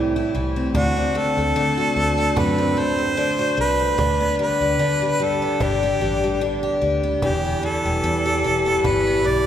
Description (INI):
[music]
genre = acoustic pop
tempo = 74 BPM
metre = 4/4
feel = swing 55% on 16ths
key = unclear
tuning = A4 = 437 Hz
[part]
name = picked twelve-string acoustic guitar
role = accompaniment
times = 0.0-9.5 s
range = E2 to G4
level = -21 LUFS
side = left 2 dB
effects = none
[part]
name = vintage muted fingered electric bass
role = bass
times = 0.0-9.5 s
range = E1 to D3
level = -26 LUFS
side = equal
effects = none
[part]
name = cajon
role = drums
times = 0.7-9.1 s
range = none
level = -31 LUFS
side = right 1 dB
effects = none
[part]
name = clear harmonica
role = melody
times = 0.8-9.5 s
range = F#4 to D5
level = -23 LUFS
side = right 2 dB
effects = none
[sound]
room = wet church reverb, RT60 3.3 s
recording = recorded in a church or concert hall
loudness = -18 LUFS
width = side -10 dB against mid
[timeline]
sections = 0.0-9.5 A section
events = none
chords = 0.0 Am7; 0.7 D7; 4.0 G/D; 7.2 Em